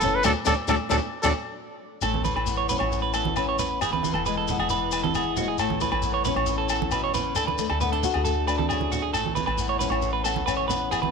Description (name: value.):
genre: highlife guitar band.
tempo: 135 BPM.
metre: 4/4.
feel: straight.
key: A major.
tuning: A4 = 440 Hz.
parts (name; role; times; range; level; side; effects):
warm trumpet; melody; 0.0-1.3 s; A4 to B4; -26 LUFS; right 1 dB; none.
flamenco guitar; accompaniment; 0.0-11.1 s; E2 to F#4; -29 LUFS; left 11 dB; none.
electric guitar at the edge of break-up; arpeggios; 0.0-11.1 s; F#4 to D5; -27 LUFS; right 8 dB; slapback echo.
woody FM bass; bass; 0.0-11.1 s; E1 to D2; -31 LUFS; equal; none.
congas; percussion; 0.0-11.1 s; none; -32 LUFS; right 8 dB; none.
shekere; percussion; 0.0-11.0 s; none; -33 LUFS; left 8 dB; none.
agogo bells; percussion; 0.2-11.0 s; none; -33 LUFS; left 12 dB; none.
room: moderate plate reverb, RT60 2.5 s.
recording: 1960s-style stereo with parts hard left and right.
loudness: -22 LUFS.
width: side -5 dB against mid.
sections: 0.0-2.0 A section; 2.0-11.1 B section.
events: band accent 0.2-2.0.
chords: 0.2 D; 2.0 Aadd9; 3.8 E; 5.6 Aadd9; 7.4 D; 9.1 Aadd9.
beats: | 0.25 0.69 1.14 1.58 | 2.02 2.47 2.91 3.36 | 3.80 4.25 4.69 5.14 | 5.58 6.03 6.47 6.92 | 7.36 7.81 8.25 8.70 | 9.14 9.59 10.03 10.47 | 10.92.